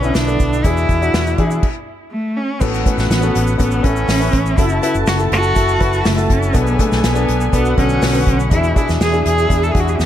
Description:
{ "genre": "piano-driven pop", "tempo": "122 BPM", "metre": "4/4", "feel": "straight", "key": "A major", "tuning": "A4 = 440 Hz", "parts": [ { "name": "rich cello", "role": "melody", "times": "0.0-10.1 s", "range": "A3 to A4", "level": "-19 LUFS", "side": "right 1 dB", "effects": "none" }, { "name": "clear baby grand piano", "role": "accompaniment", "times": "0.0-10.1 s", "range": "A2 to B4", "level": "-20 LUFS", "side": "left 4 dB", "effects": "none" }, { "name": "vintage muted fingered electric bass", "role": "bass", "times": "0.0-10.1 s", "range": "F#1 to E3", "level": "-18 LUFS", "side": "equal", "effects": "none" }, { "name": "tube shaker", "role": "percussion", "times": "0.0-10.1 s", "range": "none", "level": "-37 LUFS", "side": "right 9 dB", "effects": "none" }, { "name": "unplugged drum kit", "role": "drums", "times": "0.1-10.1 s", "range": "crash cymbal, hi-hat, kick drum, snare drum", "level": "-19 LUFS", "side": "equal", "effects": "none" }, { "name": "dark studio violin section", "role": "second line", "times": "2.6-10.1 s", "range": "E4 to A5", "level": "-25 LUFS", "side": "right 1 dB", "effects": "none" } ], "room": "light reverb, small room ambience", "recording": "dark, warm production", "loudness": "-13 LUFS", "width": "side -11 dB against mid", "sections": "0.0-2.6 A section; 2.6-10.1 B section", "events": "stop 1.6-2.6", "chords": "0.0 Bm7; 0.6 E7; 2.6 Aadd9; 4.6 F#m7; 6.5 Bm7; 8.5 E7", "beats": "0.15 | 0.65 1.14 1.63 2.12 | 2.61 3.10 3.60 4.09 | 4.58 5.07 5.56 6.05 | 6.55 7.04 7.53 8.02 | 8.51 9.01 9.50 9.99" }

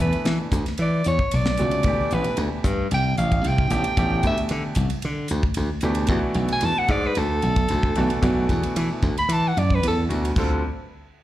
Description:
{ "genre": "electric jazz fusion", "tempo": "113 BPM", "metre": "4/4", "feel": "swing 53% on 16ths", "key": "unclear", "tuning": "A4 = 440 Hz", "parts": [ { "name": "breathy soprano saxophone", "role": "melody", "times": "0.0-10.0 s", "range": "A4 to B5", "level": "-25 LUFS", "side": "right 1 dB", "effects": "slapback echo, analog delay" }, { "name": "bright baby grand piano", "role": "accompaniment", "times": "0.0-10.6 s", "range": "B2 to A4", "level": "-26 LUFS", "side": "equal", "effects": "slapback echo" }, { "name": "glassy slap bass", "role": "bass", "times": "0.0-10.6 s", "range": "A1 to E3", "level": "-23 LUFS", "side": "equal", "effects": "none" }, { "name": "tight funk drum kit", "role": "drums", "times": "0.1-10.5 s", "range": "crash cymbal, hi-hat, kick drum, ride cymbal, snare drum", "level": "-26 LUFS", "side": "equal", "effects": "none" } ], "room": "studio reverb", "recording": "live gig heard through the venue's PA, club reverb", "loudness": "-20 LUFS", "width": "side -14 dB against mid", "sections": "0.0-10.4 A section", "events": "soprano saxophone solo 0.0-10.4", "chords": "0.0 E7sus4; 1.8 D9sus4; 6.1 E9sus4; 10.4 Dm", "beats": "0.25 0.78 1.31 | 1.84 2.38 2.91 3.44 | 3.97 4.50 5.03 5.57 | 6.10 6.63 7.16 7.70 | 8.23 8.76 9.29 9.83 | 10.36" }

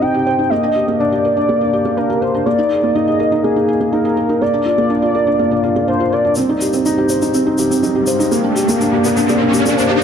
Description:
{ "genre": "piano and strings electronica", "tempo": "123 BPM", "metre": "4/4", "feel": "straight", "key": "C minor", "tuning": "A4 = 440 Hz", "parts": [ { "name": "warm velvety synth lead", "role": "melody", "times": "0.0-10.0 s", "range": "Ab4 to G5", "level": "-18 LUFS", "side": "equal", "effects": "chorus" }, { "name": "felt-muted upright piano", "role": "riff", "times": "0.0-10.0 s", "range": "Bb3 to C5", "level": "-15 LUFS", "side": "equal", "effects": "none" }, { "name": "round analog bass", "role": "bass", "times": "6.4-10.0 s", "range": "G1 to C2", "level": "-34 LUFS", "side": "equal", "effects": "none" }, { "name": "shaker", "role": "drums", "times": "6.4-9.9 s", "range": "none", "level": "-25 LUFS", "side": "left 3 dB", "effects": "none" }, { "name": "riser", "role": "sound effects", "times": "7.5-10.0 s", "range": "none", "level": "-20 LUFS", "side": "equal", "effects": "none" } ], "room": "moderate lush hall reverb, RT60 2.4 s", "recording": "dark, warm production", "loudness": "-13 LUFS", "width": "side -8 dB against mid", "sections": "0.0-6.4 A section; 6.4-10.0 B section", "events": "build-up 6.4-10.0; filter sweep on soft synth lead 6.4-10.0; riser 7.5-10.0", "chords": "0.0 Cm; 0.5 Gm; 2.5 Absus2; 4.4 Bb; 6.4 Cm; 8.3 Gm", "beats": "0.03 | 0.51 1.00 1.49 1.98 | 2.46 2.95 3.44 3.93 | 4.42 4.90 5.39 5.88 | 6.37 6.86 7.34 7.83 | 8.32 8.81 9.29 9.78" }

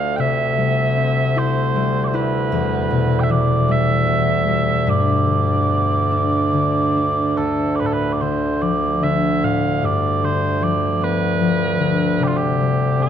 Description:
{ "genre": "celtic folk, Celtic slow air", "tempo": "47-52 BPM (dotted quarters)", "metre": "6/8", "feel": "rubato", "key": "D dorian", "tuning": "A4 = 440 Hz", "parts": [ { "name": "mellow small bagpipes", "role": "melody", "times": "0.0-13.1 s", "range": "D2 to G5", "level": "-19 LUFS", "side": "right 3 dB", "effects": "none" }, { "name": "concert harp", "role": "accompaniment", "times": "0.0-13.1 s", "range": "D2 to A4", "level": "-19 LUFS", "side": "left 3 dB", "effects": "none" } ], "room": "wet concert hall reverb, RT60 1.8 s", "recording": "dark, warm production", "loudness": "-16 LUFS", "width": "side -9 dB against mid", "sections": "0.0-7.4 A section; 7.4-13.1 B section", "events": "none", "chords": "0.2 C; 2.5 Em; 4.9 G; 7.4 Dm; 9.8 G7; 12.2 C5", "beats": "| 0.19 1.37 | 2.53 3.68 | 4.86 6.10 | 7.37 8.61 | 9.82 11.01 | 12.20" }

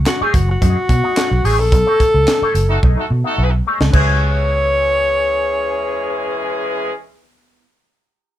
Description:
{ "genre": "funk", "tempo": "108 BPM", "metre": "4/4", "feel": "straight", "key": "C# minor", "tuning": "A4 = 440 Hz", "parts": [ { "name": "vintage muted fingered electric bass", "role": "bass", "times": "0.0-7.6 s", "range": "F#1 to B2", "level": "-17 LUFS", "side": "equal", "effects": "none" }, { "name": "breathy alto saxophone", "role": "melody", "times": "0.1-6.9 s", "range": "F#4 to C#5", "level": "-18 LUFS", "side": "left 1 dB", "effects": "slapback echo" }, { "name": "electric guitar with an envelope filter", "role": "accompaniment", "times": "0.1-7.7 s", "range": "A3 to D#5", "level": "-22 LUFS", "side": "left 2 dB", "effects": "wah, analog chorus" }, { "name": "crisp fusion drum kit", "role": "drums", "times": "0.1-4.1 s", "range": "crash cymbal, handclaps, hi-hat, kick drum, snare drum", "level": "-18 LUFS", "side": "equal", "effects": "none" }, { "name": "clear horn section", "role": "second line", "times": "2.7-6.9 s", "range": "E3 to A4", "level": "-22 LUFS", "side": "left 1 dB", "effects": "none" } ], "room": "light reverb", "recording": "none", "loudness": "-13 LUFS", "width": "side -12 dB against mid", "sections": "0.0-3.9 A section; 3.9-6.2 B section", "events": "band accent 1.7-3.9; drum fill 2.8-3.9", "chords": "0.0 B13; 3.9 C#m7", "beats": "0.06 0.61 1.17 | 1.72 2.27 2.83 3.38 | 3.94 4.49 5.05 5.60" }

